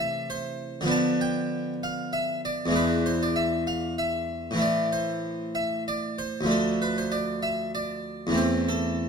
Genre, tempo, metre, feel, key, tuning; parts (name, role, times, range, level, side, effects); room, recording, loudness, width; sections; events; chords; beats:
classical, baroque-style suite movement for harpsichord; 64 BPM (dotted quarters); 12/8; rubato; A minor; A4 = 445 Hz
harpsichord; solo; 0.0-9.1 s; D2 to A5; -24 LUFS; equal
moderate stone room reverb, RT60 1.4 s; -24 LUFS; side -6 dB against mid
0.0-9.1 A section
0.0 Am/C; 0.9 Bdim/D; 2.7 E7; 4.6 Am; 6.5 Dm; 8.4 Am/E
0.88 1.81 | 2.74 3.67 4.61 5.55 | 6.49 7.44 8.38